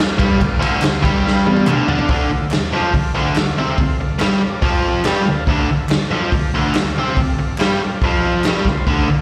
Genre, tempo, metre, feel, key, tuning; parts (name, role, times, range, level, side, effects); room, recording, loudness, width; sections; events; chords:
garage rock duo or trio; 142 BPM; 4/4; straight; D minor; A4 = 440 Hz
combo organ; sustained chords; 0.0-9.2 s; F4 to A5; -30 LUFS; equal
raw garage drum kit; drums; 0.0-9.0 s; hi-hat, kick drum, ride cymbal, snare drum, toms; -21 LUFS; equal
biting overdriven guitar; riff; 0.2-9.2 s; D2 to D4; -20 LUFS; equal; slapback echo
group handclap; percussion; 0.8-8.5 s; -34 LUFS; equal
light reverb; live gig heard through the venue's PA, recital hall reverb; -17 LUFS; mono
0.0-2.1 A section; 2.1-9.2 B section
drum fill 1.2-2.1; transistor combo organ fill 1.2-2.1, 4.8-5.5
0.0 Dm